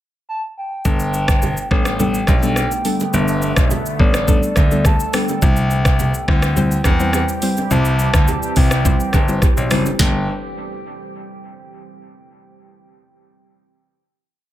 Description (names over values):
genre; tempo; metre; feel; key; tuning
afrobeats; 105 BPM; 4/4; straight; G major; A4 = 439 Hz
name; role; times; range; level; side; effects
hollow clarinet-like synth lead; melody; 0.3-10.3 s; D5 to A5; -26 LUFS; right 1 dB; chorus, dub echo
soft round pluck; accompaniment; 0.8-10.2 s; G3 to C5; -22 LUFS; left 2 dB; chorus, dub echo
afro-pop drum kit; drums; 0.8-10.1 s; hi-hat, kick drum, rim click, shaker, snare drum; -17 LUFS; equal; none
deep dark ambient pad; sustained chords; 1.6-10.3 s; D3 to A4; -29 LUFS; right 2 dB; chorus, built-in reverb
bright concert grand piano; bass; 0.9-10.3 s; F#1 to E2; -19 LUFS; left 1 dB; none
congas and bongos; percussion; 0.9-10.3 s; none; -27 LUFS; right 5 dB; none
room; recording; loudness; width
digital ambience; echo-heavy mix; -14 LUFS; side -13 dB against mid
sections
0.0-0.9 pickup bar; 0.9-10.0 chorus; 10.0-12.3 final chord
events
none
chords
0.0 N.C.; 0.9 Gadd9; 5.4 C; 10.0 Gadd9